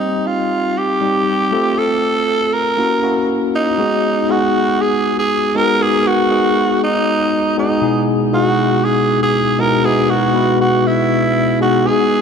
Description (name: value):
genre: pop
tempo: 119 BPM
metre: 4/4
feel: straight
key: B major from 3.8 s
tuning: A4 = 441 Hz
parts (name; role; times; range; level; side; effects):
- growling tenor saxophone; melody; 0.0-12.2 s; D#4 to Bb4; -16 LUFS; right 2 dB; ping-pong delay
- tine electric piano; accompaniment; 0.0-12.2 s; B2 to D#5; -16 LUFS; left 2 dB; medium stereo tremolo
room: moderate lush hall reverb, RT60 2.8 s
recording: dark, warm production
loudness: -13 LUFS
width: side -6 dB against mid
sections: 0.0-3.8 A section; 3.8-12.2 B section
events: none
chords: 0.0 Cm; 1.5 F; 2.8 Gb7; 3.8 B6; 7.8 Emaj7/B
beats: 0.26 0.77 1.27 | 1.77 2.28 2.78 3.29 | 3.79 4.29 4.80 5.30 | 5.81 6.31 6.82 7.32 | 7.82 8.33 8.83 9.34 | 9.84 10.35 10.85 11.35 | 11.86